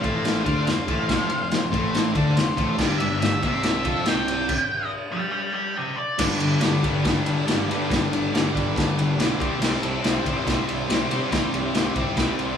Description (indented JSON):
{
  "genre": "garage rock duo or trio",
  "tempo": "141 BPM",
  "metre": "4/4",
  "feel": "straight",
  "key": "unclear",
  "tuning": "A4 = 440 Hz",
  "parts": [
    { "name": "octave-fuzz lead guitar", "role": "melody", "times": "0.0-6.2 s", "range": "C5 to G5", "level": "-27 LUFS", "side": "right 1 dB", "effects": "distortion" },
    { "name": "overdriven combo organ", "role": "sustained chords", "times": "0.0-12.6 s", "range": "C4 to D5", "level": "-32 LUFS", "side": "left 2 dB", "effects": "none" },
    { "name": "thick fuzz guitar", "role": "riff", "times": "0.0-12.6 s", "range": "F2 to F4", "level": "-25 LUFS", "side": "left 1 dB", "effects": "distortion" },
    { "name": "fuzz picked electric bass", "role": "bass", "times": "0.0-12.5 s", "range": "F1 to C3", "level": "-28 LUFS", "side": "equal", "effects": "overdrive" },
    { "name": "raw garage drum kit", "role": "drums", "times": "0.0-12.5 s", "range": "crash cymbal, kick drum, ride cymbal, snare drum", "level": "-25 LUFS", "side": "left 1 dB", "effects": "none" }
  ],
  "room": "wet small room reverb, RT60 0.6 s",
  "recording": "band playing live in one room, studio reverb",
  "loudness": "-20 LUFS",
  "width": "side -8 dB against mid",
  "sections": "0.0-6.2 A section; 6.2-12.6 B section",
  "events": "lead electric guitar solo 0.0-6.2; stop 4.5-6.2",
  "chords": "0.0 F5; 2.8 G5; 6.2 G; 9.4 C",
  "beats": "0.24 0.67 | 1.09 1.52 1.94 2.37 | 2.79 3.21 3.64 4.07 | 4.49 4.92 5.34 5.77 | 6.20 6.62 7.05 7.48 | 7.90 8.33 8.76 9.18 | 9.61 10.04 10.46 10.89 | 11.31 11.74 12.17"
}